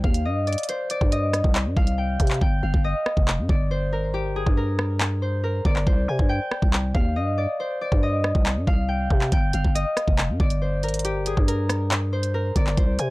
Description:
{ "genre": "hip hop, drill", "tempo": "139 BPM", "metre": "4/4", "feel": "half-time", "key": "G phrygian", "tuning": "A4 = 437 Hz", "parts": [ { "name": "concert harp", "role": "melody", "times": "0.0-13.1 s", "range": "G4 to Ab5", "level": "-27 LUFS", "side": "left 1 dB", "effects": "tape echo" }, { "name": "growling 808-style bass", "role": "bass", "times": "0.0-13.1 s", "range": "F1 to C3", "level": "-24 LUFS", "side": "equal", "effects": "none" }, { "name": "drill drum kit", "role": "drums", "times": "0.0-13.1 s", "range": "handclaps, hi-hat, kick drum, rim click", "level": "-22 LUFS", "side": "equal", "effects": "none" } ], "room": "little or no reverb", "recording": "dark, warm production", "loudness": "-20 LUFS", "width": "side -20 dB against mid", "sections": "0.0-13.1 A section", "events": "hi-hats muted 2.4-9.3", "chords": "0.0 Cm; 2.4 Gm; 5.9 Cm; 9.3 Gm" }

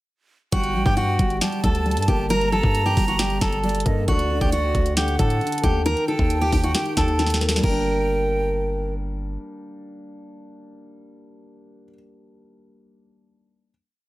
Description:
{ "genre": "hip hop, trap", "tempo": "135 BPM", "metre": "4/4", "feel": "half-time", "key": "G harmonic minor", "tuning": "A4 = 439 Hz", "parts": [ { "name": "fingerpicked steel-string acoustic guitar", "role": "melody", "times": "0.5-8.9 s", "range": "F#4 to Bb4", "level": "-24 LUFS", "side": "equal", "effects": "digital delay" }, { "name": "breathy silver concert flute", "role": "second line", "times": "0.5-8.9 s", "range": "D5 to Bb5", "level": "-29 LUFS", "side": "right 4 dB", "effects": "digital delay" }, { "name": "dark concert grand piano", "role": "accompaniment", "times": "0.5-13.7 s", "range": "D3 to D4", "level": "-28 LUFS", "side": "left 2 dB", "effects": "none" }, { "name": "hard-hitting 808-style bass", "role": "bass", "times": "0.5-9.4 s", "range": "G1 to A2", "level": "-24 LUFS", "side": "equal", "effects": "none" }, { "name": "trap drum kit", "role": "drums", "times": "0.5-7.7 s", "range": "crash cymbal, hi-hat, kick drum, snare drum", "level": "-23 LUFS", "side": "equal", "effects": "none" } ], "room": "light reverb", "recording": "none", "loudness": "-19 LUFS", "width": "side -17 dB against mid", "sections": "0.5-7.6 hook; 7.6-11.2 final chord", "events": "drum fill 7.2-7.6", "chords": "0.5 Gmadd9; 4.1 D; 5.9 Eb; 7.6 Gm" }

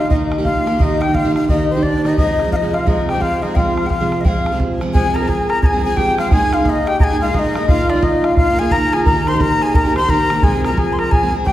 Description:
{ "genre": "celtic folk, Celtic hornpipe", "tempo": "175 BPM", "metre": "4/4", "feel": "swing 63% on 8ths", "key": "F minor", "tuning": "A4 = 435 Hz", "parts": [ { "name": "breathy bright wooden flute", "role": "melody", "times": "0.0-11.5 s", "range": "C5 to C6", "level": "-19 LUFS", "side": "left 2 dB", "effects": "none" }, { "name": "mellow accordion", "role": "second line", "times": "0.0-11.5 s", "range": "C4 to C5", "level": "-22 LUFS", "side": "left 2 dB", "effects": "none" }, { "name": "picked plugged-in steel-string acoustic guitar", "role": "accompaniment", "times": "0.0-11.5 s", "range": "F2 to Ab4", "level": "-18 LUFS", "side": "right 2 dB", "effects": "none" }, { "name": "bodhran", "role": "percussion", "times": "0.1-11.5 s", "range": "none", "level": "-18 LUFS", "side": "equal", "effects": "none" } ], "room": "wet recital hall reverb, RT60 1.6 s", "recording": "heard from further back in the room", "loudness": "-13 LUFS", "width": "side -13 dB against mid", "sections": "0.0-4.9 A section; 4.9-11.5 B section", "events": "none", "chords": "0.0 Eb; 2.2 Fm; 6.3 Absus2; 7.7 Bbsus4; 9.1 Eb; 10.4 Fm" }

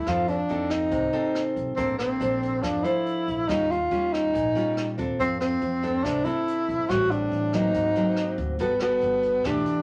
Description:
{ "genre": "bossa nova", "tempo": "141 BPM", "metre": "4/4", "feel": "straight", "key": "unclear", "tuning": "A4 = 442 Hz", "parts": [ { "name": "breathy tenor saxophone", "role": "melody", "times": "0.0-9.8 s", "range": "B3 to F#4", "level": "-27 LUFS", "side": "equal", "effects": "none" }, { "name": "nylon-string guitar", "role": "accompaniment", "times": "0.0-9.8 s", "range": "Ab2 to C5", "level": "-31 LUFS", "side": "equal", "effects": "none" }, { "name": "upright bass", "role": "bass", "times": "0.0-9.7 s", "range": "E1 to F2", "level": "-37 LUFS", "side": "equal", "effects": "none" }, { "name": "jazz brush drum kit", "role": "drums", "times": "0.1-9.8 s", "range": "hi-hat, kick drum, rim click", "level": "-41 LUFS", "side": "equal", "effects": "none" } ], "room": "moderate studio ambience, RT60 0.5 s", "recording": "none", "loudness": "-25 LUFS", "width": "mono", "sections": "0.0-9.8 A section", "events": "none", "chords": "0.1 F7; 1.8 Bbmaj9; 3.5 Eb9; 5.2 F6; 6.9 Am7; 7.8 Ab9; 8.6 Gmaj9" }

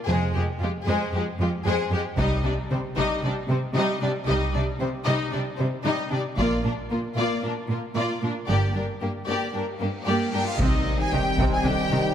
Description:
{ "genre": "cinematic, epic orchestral film score", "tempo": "114 BPM", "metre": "4/4", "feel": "straight", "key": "C minor", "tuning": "A4 = 438 Hz", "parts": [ { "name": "clear symphonic violin section", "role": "melody", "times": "0.1-12.1 s", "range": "F4 to Ab5", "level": "-31 LUFS", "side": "left 2 dB", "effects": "none" }, { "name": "clear symphonic violin section", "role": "second line", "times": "0.1-12.1 s", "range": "Bb3 to Ab4", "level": "-30 LUFS", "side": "left 3 dB", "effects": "none" }, { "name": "clear symphonic viola section", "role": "accompaniment", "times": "0.1-12.0 s", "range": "C3 to Eb4", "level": "-30 LUFS", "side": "equal", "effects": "none" }, { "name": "rich symphonic cello section", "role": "bass", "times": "0.1-12.0 s", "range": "F2 to C3", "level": "-28 LUFS", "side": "right 1 dB", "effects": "none" }, { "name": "rich symphonic double bass section", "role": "bass", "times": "0.1-12.0 s", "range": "F1 to C2", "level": "-29 LUFS", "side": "right 2 dB", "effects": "none" }, { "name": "solo taiko drums", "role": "drums", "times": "2.2-3.2, 6.4-7.4, 10.6-11.9 s", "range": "none", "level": "-29 LUFS", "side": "equal", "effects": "none" }, { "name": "cymbal swell and sub drop", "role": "sound effects", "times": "9.7-12.1 s", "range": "none", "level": "-34 LUFS", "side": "equal", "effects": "none" }, { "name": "mellow French horn section", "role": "sustained chords", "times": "10.6-12.1 s", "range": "C4 to Eb4", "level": "-30 LUFS", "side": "left 5 dB", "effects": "none" }, { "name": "warm trombone section", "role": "sustained chords", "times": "10.6-12.1 s", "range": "Eb3 to G3", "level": "-29 LUFS", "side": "right 3 dB", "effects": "none" } ], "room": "wet concert hall reverb, RT60 2.5 s", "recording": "none", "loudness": "-22 LUFS", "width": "side -9 dB against mid", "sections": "0.0-10.6 A section; 10.6-12.1 B section", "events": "build-up 0.0-10.6; cymbal swell 9.7-10.6; impact 10.6-12.1", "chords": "0.1 Fm; 2.2 Cmadd9; 6.4 Bb; 8.5 Gm; 10.6 Cm" }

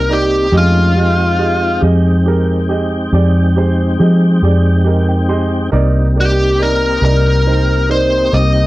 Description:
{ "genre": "blues", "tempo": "46 BPM (dotted quarters)", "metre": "12/8", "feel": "straight", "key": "unclear", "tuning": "A4 = 440 Hz", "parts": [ { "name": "biting lead guitar", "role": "melody", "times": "0.0-8.7 s", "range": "F4 to Eb5", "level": "-15 LUFS", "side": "left 1 dB", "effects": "overdrive" }, { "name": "tonewheel organ", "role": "sustained chords", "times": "0.0-8.7 s", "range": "Ab3 to G5", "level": "-20 LUFS", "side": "left 1 dB", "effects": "chorus vibrato, slow rotary speaker" }, { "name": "vintage muted fingered electric bass", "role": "bass", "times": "0.0-8.7 s", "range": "C2 to F3", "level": "-13 LUFS", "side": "equal", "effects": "none" }, { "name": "warm grand piano", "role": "accompaniment", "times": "0.1-8.7 s", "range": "Eb4 to D6", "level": "-20 LUFS", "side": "right 4 dB", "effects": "none" } ], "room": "little or no reverb", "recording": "dry, close 1970s-style studio recording", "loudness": "-10 LUFS", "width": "side -17 dB against mid", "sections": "0.0-8.7 A section", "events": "grand piano fill 4.4-5.7", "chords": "0.0 Cm7; 0.5 Fm7; 5.7 Cm7" }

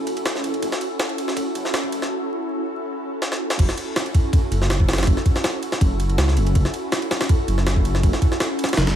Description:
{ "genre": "drum and bass, jungle", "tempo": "162 BPM", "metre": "4/4", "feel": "straight", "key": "F# minor", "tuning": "A4 = 441 Hz", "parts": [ { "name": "ethereal airy pad", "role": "sustained chords", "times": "0.0-9.0 s", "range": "C#4 to A4", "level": "-26 LUFS", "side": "equal", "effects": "ensemble chorus, built-in reverb" }, { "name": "dark detuned saw bass", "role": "bass", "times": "0.0-9.0 s", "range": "F#1 to C#2", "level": "-22 LUFS", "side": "equal", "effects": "tube saturation, high-pass filter" }, { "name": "jungle sampler-style drum kit", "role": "drums", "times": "0.1-9.0 s", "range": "crash cymbal, kick drum, ride cymbal, snare drum", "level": "-21 LUFS", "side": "equal", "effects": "high-pass filter on snare, studio reverb, high-pass filter on cymbals, high-pass filter on kick" } ], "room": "digital ambience", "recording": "vinyl crackle", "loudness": "-19 LUFS", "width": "side -10 dB against mid", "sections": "0.0-3.6 A section; 3.6-9.0 B section", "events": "build-up 0.0-3.6; filter sweep on ambient pad 0.0-3.6; drum fill 3.2-3.6; drop 3.6-9.0", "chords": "0.0 F#m7" }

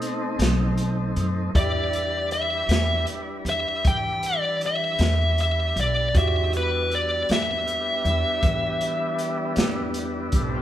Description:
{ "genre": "slow blues", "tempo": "52 BPM (dotted quarters)", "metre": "12/8", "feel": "straight", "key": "E minor", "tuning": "A4 = 438 Hz", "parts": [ { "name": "bright concert grand piano", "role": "accompaniment", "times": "0.0-10.6 s", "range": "E4 to D5", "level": "-35 LUFS", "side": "right 4 dB", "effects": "none" }, { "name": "tonewheel organ", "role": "sustained chords", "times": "0.0-10.6 s", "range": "D#3 to B4", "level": "-31 LUFS", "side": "left 1 dB", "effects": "slow rotary speaker" }, { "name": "upright bass", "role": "bass", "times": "0.0-10.6 s", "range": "B1 to E3", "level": "-26 LUFS", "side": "equal", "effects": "none" }, { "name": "crunchy breakbeat drum kit", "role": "drums", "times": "0.0-10.5 s", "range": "hi-hat, kick drum, snare drum", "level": "-26 LUFS", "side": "equal", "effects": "none" }, { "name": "smooth overdriven lead guitar", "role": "melody", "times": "1.6-9.6 s", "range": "B4 to G5", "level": "-24 LUFS", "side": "left 1 dB", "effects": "none" } ], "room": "moderate large studio reverb, RT60 1.1 s", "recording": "band playing live in one room", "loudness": "-21 LUFS", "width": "side -12 dB against mid", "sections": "0.0-10.6 A section", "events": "none", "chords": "0.0 B7b9; 1.5 Em7" }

